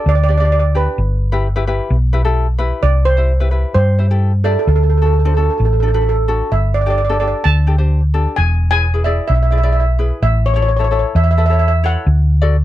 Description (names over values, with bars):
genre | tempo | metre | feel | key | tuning
calypso | 130 BPM | 4/4 | straight | G major | A4 = 440 Hz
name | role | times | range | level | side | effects
ukulele | accompaniment | 0.0-12.6 s | D4 to D5 | -22 LUFS | left 4 dB | none
steel pan | melody | 0.1-12.6 s | A4 to A5 | -18 LUFS | right 3 dB | none
hollow-body short-scale fingered electric bass | bass | 0.1-12.6 s | E1 to G2 | -13 LUFS | equal | none
room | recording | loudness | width
little or no reverb | dry, close 1970s-style studio recording | -12 LUFS | side -14 dB against mid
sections
0.0-12.6 A section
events
none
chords
0.0 G; 1.0 Em/G; 2.8 C; 4.7 D; 6.5 Gsus2; 8.4 E7; 10.2 A; 12.1 D